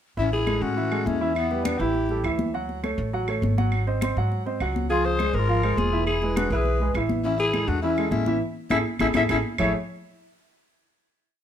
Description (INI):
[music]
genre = Afro-Cuban jazz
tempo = 204 BPM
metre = 4/4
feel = straight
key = A major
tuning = A4 = 439 Hz
[part]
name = growling alto saxophone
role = melody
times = 0.2-2.2, 4.9-9.7 s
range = D4 to B#4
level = -27 LUFS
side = left 3 dB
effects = plate reverb
[part]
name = breathy mellow bass recorder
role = second line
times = 0.2-2.2, 4.9-9.7 s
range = B3 to C#5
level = -29 LUFS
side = left 5 dB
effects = none
[part]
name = warm grand piano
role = accompaniment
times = 0.2-9.7 s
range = E3 to F#5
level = -28 LUFS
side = right 3 dB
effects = none
[part]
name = upright bass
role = bass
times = 0.2-9.7 s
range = E1 to A2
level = -27 LUFS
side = right 1 dB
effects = none
[part]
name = congas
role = percussion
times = 0.2-9.7 s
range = none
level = -30 LUFS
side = left 3 dB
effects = none
[part]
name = claves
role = percussion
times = 0.5-9.7 s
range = none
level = -32 LUFS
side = right 5 dB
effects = none
[sound]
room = moderate studio reverb, RT60 0.7 s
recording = none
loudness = -22 LUFS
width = side -9 dB against mid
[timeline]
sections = 0.2-9.6 A section; 9.6-10.8 final chord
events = band accent 8.4-9.6; drum fill 9.1-9.6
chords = 0.2 Amaj7; 1.4 Em; 2.0 A5; 2.5 Dmaj7; 3.7 G#7; 4.9 C#maj7; 6.1 E; 7.2 Amaj7